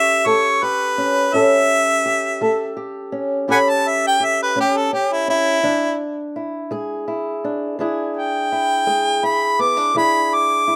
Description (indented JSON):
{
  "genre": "acoustic country blues, solo or duo",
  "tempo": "56 BPM (dotted quarters)",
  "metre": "12/8",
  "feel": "straight",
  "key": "unclear",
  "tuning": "A4 = 441 Hz",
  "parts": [
    { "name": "clear harmonica", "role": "melody", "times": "0.0-10.8 s", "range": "E4 to D6", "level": "-19 LUFS", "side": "equal", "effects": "none" },
    { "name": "fingerpicked old ladder-braced acoustic guitar", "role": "accompaniment", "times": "0.0-10.8 s", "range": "A2 to A4", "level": "-23 LUFS", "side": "equal", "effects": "slapback echo" }
  ],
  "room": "little or no reverb",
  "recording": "recorded outdoors, with no room sound",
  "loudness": "-19 LUFS",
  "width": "mono",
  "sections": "0.0-10.8 A section",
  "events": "harmonica solo 0.0-10.8",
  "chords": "0.0 A7; 5.6 E7"
}